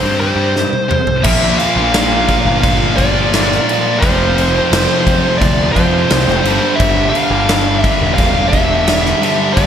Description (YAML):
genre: classic rock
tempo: 86 BPM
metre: 4/4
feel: straight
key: unclear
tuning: A4 = 439 Hz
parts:
  - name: fuzz lead guitar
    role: melody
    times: 0.0-9.7 s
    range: C5 to F5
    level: -16 LUFS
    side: equal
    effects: distortion, slapback echo
  - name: tight distorted guitar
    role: riff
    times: 0.0-9.7 s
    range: F2 to C4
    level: -18 LUFS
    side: left 2 dB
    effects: distortion, slapback echo
  - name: fuzz picked electric bass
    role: bass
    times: 0.0-9.7 s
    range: E1 to G2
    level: -18 LUFS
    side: equal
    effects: overdrive
  - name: big rock drum kit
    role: drums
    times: 0.6-9.7 s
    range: crash cymbal, kick drum, snare drum, toms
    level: -17 LUFS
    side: equal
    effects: none
  - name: string machine, violins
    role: sustained chords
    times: 1.2-9.7 s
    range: C4 to D5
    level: -27 LUFS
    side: equal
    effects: none
  - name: thick fuzz guitar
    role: riff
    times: 1.2-9.7 s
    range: F2 to Bb3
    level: -19 LUFS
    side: equal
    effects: distortion
room: moderate lush hall reverb, RT60 1.9 s, small room ambience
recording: big arena sound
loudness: -11 LUFS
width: side -8 dB against mid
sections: 0.0-1.2 A section; 1.2-9.7 B section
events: drum fill 0.5-1.2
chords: 0.0 C5; 1.2 Bb; 4.0 F; 6.5 Gm